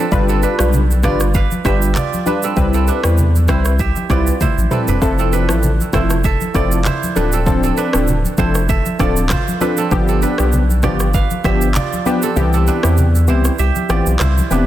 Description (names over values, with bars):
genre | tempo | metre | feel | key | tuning
afrobeats | 98 BPM | 4/4 | swing 55% on 16ths | G mixolydian | A4 = 441 Hz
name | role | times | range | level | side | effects
warm analog keys | accompaniment | 0.0-14.7 s | E3 to B4 | -19 LUFS | left 2 dB | chorus
kora | riff | 0.0-14.7 s | C4 to F5 | -22 LUFS | right 8 dB | digital delay
saturated sub bass | bass | 0.1-14.7 s | D1 to E2 | -16 LUFS | equal | none
afro-pop drum kit | drums | 0.1-14.7 s | handclaps, kick drum, rim click, shaker, toms | -21 LUFS | equal | soft clipping on snare
congas | percussion | 0.1-14.7 s | none | -25 LUFS | left 1 dB | none
room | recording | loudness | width
little or no reverb | dense, heavily limited modern master | -13 LUFS | side -13 dB against mid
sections
0.0-14.7 A section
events
drum fill 4.4-5.0; kick muted 12.4-14.7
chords
0.1 G7; 2.6 Cmaj7; 5.0 Fmaj7; 7.2 Dm7; 9.9 G7; 12.4 Cmaj7